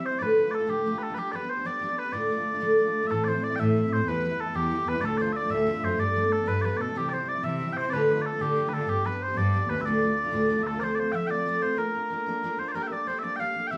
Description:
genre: celtic folk, Celtic jig.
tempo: 124 BPM (dotted quarters).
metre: 6/8.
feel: straight.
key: D dorian.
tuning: A4 = 440 Hz.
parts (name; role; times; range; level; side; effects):
mellow small bagpipes; melody; 0.0-13.8 s; G4 to G5; -31 LUFS; equal; none.
accordion; second line; 0.0-13.8 s; G4 to F5; -39 LUFS; equal; light tremolo tuning.
picked steel-string acoustic guitar; accompaniment; 0.0-13.8 s; D2 to Bb4; -31 LUFS; equal; none.
warm cello; bass; 3.1-10.8 s; D2 to D3; -32 LUFS; equal; none.
room: moderate large studio reverb, RT60 0.8 s.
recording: band playing live in one room.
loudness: -27 LUFS.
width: mono.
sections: 0.0-3.1 A section; 3.1-10.8 A section; 10.8-13.8 B section.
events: none.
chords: 0.2 Dm; 1.2 G; 2.1 Dm; 3.1 Am; 4.1 Em; 5.0 Dm; 6.0 Gadd9; 7.0 C; 7.9 Dm; 8.9 G; 9.8 Dm; 10.8 F; 11.8 Bb; 12.7 Gm.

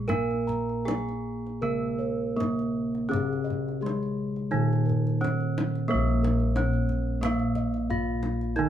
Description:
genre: Javanese gamelan.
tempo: 76-90 BPM.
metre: 4/4.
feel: straight.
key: Bb slendro.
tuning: A4 = 440 Hz.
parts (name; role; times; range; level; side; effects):
gamelan-type bronze metallophone; melody; 0.0-8.7 s; Ab3-25c to Bb4; -31 LUFS; right 2 dB; none.
gamelan-type bronze metallophone; accompaniment; 0.0-8.7 s; Db3-45c to Bb3; -30 LUFS; right 3 dB; none.
gamelan-type bossed gongs; bass; 0.0-8.7 s; Bb1 to Bb4; -29 LUFS; left 1 dB; none.
gamelan-type bossed gongs; arpeggios; 0.1-8.7 s; Ab4-25c to Bb5; -35 LUFS; left 1 dB; none.
kendang; percussion; 0.1-8.5 s; none; -35 LUFS; left 2 dB; none.
room: moderate studio reverb, RT60 0.7 s.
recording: band playing live in one room.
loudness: -25 LUFS.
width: side -10 dB against mid.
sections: 0.0-5.9 A section; 5.9-8.7 B section.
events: none.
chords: none.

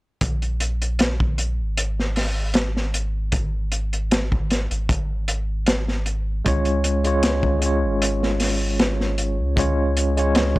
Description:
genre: trip hop.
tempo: 77 BPM.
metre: 4/4.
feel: swing 53% on 16ths.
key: unclear.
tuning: A4 = 438 Hz.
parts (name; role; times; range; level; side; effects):
soft dub sub bass; bass; 0.2-10.6 s; Ab1 to Db2; -23 LUFS; equal; none.
crunchy breakbeat drum kit; drums; 0.2-10.6 s; hi-hat, kick drum, snare drum; -22 LUFS; equal; vintage 12-bit sampler grit.
tine electric piano; accompaniment; 6.4-10.6 s; Ab3 to Db5; -22 LUFS; equal; fast stereo tremolo, vintage 12-bit sampler grit, tape echo.
room: small room ambience.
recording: dry, gritty hardware recording, transformer saturation.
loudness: -20 LUFS.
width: side -19 dB against mid.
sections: 0.2-10.6 A section.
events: none.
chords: 0.2 Absus2; 6.5 Db.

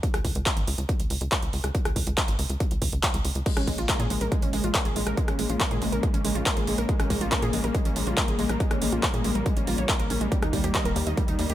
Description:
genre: uplifting trance.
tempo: 140 BPM.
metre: 4/4.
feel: straight.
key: Bb dorian.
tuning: A4 = 440 Hz.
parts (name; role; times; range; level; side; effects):
big-room dance drum kit; drums; 0.0-11.5 s; crash cymbal, handclaps, hi-hat, rim click; -29 LUFS; equal; none.
electronic kick drum; drums; 0.0-11.3 s; none; -26 LUFS; equal; none.
tight sequencer bass; bass; 0.1-11.5 s; Eb1 to Bb2; -29 LUFS; equal; sidechain pumping.
warm symphonic string section; sustained chords; 3.5-11.5 s; Db3 to Bb3; -31 LUFS; left 3 dB; sidechain pumping.
wide unison pluck; arpeggios; 3.5-11.5 s; G3 to Eb5; -30 LUFS; right 2 dB; sidechain pumping, digital delay.
room: light reverb.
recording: none.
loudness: -23 LUFS.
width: side -13 dB against mid.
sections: 0.0-11.5 A section.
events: none.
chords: 0.0 Db5; 3.5 Bbm7; 10.3 Eb.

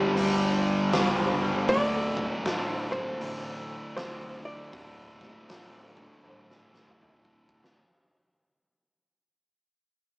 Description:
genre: stoner and doom metal.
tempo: 79 BPM.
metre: 4/4.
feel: swing 63% on 8ths.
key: unclear.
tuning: A4 = 441 Hz.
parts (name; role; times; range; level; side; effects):
hollow-body jazz guitar; melody; 0.0-7.0 s; G4 to D5; -31 LUFS; equal; none.
thick fuzz guitar; riff; 0.0-7.8 s; D2 to G3; -33 LUFS; equal; distortion.
thick fuzz guitar; riff; 0.0-7.8 s; D2 to G3; -32 LUFS; equal; distortion.
tight distorted guitar; riff; 0.0-7.7 s; D2 to G3; -35 LUFS; equal; distortion.
hollow-body short-scale picked electric bass; bass; 0.2-7.6 s; D1 to D2; -42 LUFS; equal; overdrive.
oversized low-tuned drum kit; drums; 0.2-7.8 s; hi-hat, kick drum, snare drum, toms; -31 LUFS; equal; none.
room: light reverb.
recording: rough rehearsal-room recording, small speaker sound.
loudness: -25 LUFS.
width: side -28 dB against mid.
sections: 0.0-7.8 A section.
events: fade-out 0.0-7.8; drum fill 6.3-7.8.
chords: 0.0 G5; 1.7 D5.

